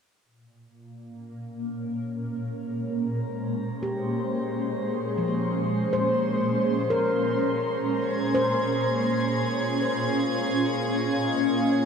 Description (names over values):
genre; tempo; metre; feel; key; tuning
ambient; free time; none; none; Bb dorian; A4 = 440 Hz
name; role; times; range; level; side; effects
shimmering ambient pad; sustained chords; 1.0-11.9 s; Bb2 to Eb5; -25 LUFS; equal; chorus, built-in reverb, phaser
handpan; arpeggios; 3.8-11.9 s; F3 to C5; -28 LUFS; left 1 dB; ping-pong delay
warm studio violin section; texture; 8.0-11.9 s; Ab4 to Ab6; -31 LUFS; equal; none
room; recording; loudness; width
wet shimmer reverb, RT60 8.2 s; dark, warm production; -24 LUFS; side -6 dB against mid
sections
0.3-11.9 A section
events
none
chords
0.3 Bbm7; 8.0 Bbm9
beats
free time